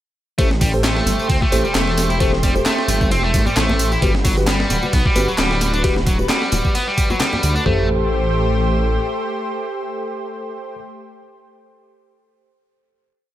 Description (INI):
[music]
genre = breakbeat, breaks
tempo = 132 BPM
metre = 4/4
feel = swing 55% on 16ths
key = A dorian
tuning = A4 = 442 Hz
[part]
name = lush unison pad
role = sustained chords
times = 0.6-10.7 s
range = A3 to C5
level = -26 LUFS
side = equal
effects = chorus, sidechain pumping
[part]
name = distorted electric guitar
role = riff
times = 0.4-7.9 s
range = F#3 to E4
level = -22 LUFS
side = equal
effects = overdrive, dub echo
[part]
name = mellow tine electric piano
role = stabs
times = 0.4-10.7 s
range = F#4 to C5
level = -25 LUFS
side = left 1 dB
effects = slow stereo tremolo, dub echo
[part]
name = dark detuned saw bass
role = bass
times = 0.4-9.0 s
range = D1 to D2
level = -20 LUFS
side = equal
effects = none
[part]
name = breakbeat sampler-style drum kit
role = drums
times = 0.4-7.8 s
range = hi-hat, kick drum, ride cymbal, snare drum, toms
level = -20 LUFS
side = equal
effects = small room ambience
[part]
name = garage drum kit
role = drums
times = 0.4-7.6 s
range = handclaps, hi-hat, tambourine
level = -27 LUFS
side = equal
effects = overdrive, small room ambience
[part]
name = bongos and congas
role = percussion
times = 0.5-7.4 s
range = none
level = -27 LUFS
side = left 1 dB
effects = none
[sound]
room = digital ambience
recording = none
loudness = -15 LUFS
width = side -13 dB against mid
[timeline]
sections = 0.4-7.7 drop; 7.7-11.3 final chord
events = drop 0.4-7.7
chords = 0.4 Am7; 4.0 Gmaj7; 7.7 Am7